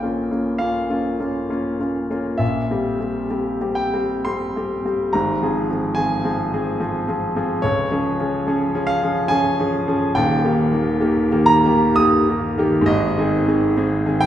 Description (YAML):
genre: classical, romantic nocturne for solo piano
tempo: 59-74 BPM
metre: 3/4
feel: rubato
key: F minor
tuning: A4 = 439 Hz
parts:
  - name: clear grand piano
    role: solo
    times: 0.0-14.3 s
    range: Eb1 to Eb6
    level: -17 LUFS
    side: equal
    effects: none
room: wet recital hall reverb, RT60 1.5 s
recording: heard from further back in the room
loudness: -17 LUFS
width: side -11 dB against mid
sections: 0.0-14.3 A section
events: none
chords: 0.0 Bbm; 2.4 C7/Bb; 5.1 Fm/Ab; 7.6 Db; 10.2 Eb; 12.9 Ab